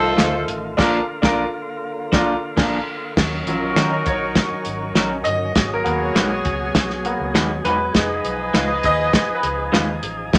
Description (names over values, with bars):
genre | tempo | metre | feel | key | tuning
uptempo 1960s-style soul | 100 BPM | 4/4 | straight | Eb minor | A4 = 440 Hz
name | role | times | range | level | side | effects
warm horn section | second line | 0.0-10.4 s | Eb4 to F5 | -27 LUFS | equal | none
bright upright piano | accompaniment | 0.0-10.4 s | Gb3 to Eb5 | -26 LUFS | equal | tube saturation
tonewheel organ | sustained chords | 0.0-10.4 s | Cb3 to Ab4 | -30 LUFS | equal | overdrive, slow rotary speaker
vintage muted fingered electric bass | bass | 0.0-10.4 s | Fb1 to Eb3 | -32 LUFS | equal | none
electric guitar through a small old amp | stabs | 0.2-9.9 s | Gb3 to C5 | -25 LUFS | equal | none
cloth-damped thuddy drum kit | drums | 0.2-10.4 s | crash cymbal, hi-hat, kick drum, snare drum | -22 LUFS | equal | none
finger snap | percussion | 0.2-9.9 s | none | -31 LUFS | equal | none
room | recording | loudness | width
moderate studio reverb, RT60 0.6 s | none | -20 LUFS | mono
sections
0.0-3.2 A section; 3.2-10.4 B section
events
band accent 0.8-3.2; upright piano solo 3.2-10.4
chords
0.0 F7; 0.8 Bb; 3.2 Ebm7; 5.6 Abm7; 7.9 Fm7b5